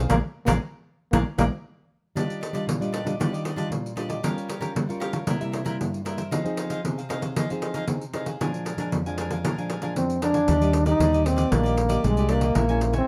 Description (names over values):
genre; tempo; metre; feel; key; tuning
samba and choro; 115 BPM; 4/4; straight; Eb major; A4 = 440 Hz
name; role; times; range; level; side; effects
cavaquinho; accompaniment; 0.0-13.1 s; D4 to Ab5; -36 LUFS; equal; none
nylon-string guitar; accompaniment; 0.0-13.1 s; F2 to Bb4; -32 LUFS; equal; none
overdriven fingered electric bass; bass; 0.0-1.5, 10.5-13.0 s; Bb1 to Eb2; -26 LUFS; equal; none
mellow trombone; melody; 0.1-1.4, 10.0-13.1 s; Ab3 to Eb4; -26 LUFS; equal; none
pandeiro; percussion; 0.1-13.1 s; none; -31 LUFS; equal; none
room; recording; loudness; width
little or no reverb; close, detailed microphones; -25 LUFS; mono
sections
0.0-2.2 A section; 2.2-10.5 B section; 10.5-13.1 C section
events
band accent 0.1-2.2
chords
0.1 Bb7; 2.2 Ebmaj9; 4.2 Gm7b5; 5.3 C7; 6.3 Fm7; 8.4 Bb7; 10.5 Ebmaj7; 12.6 Bbm7b5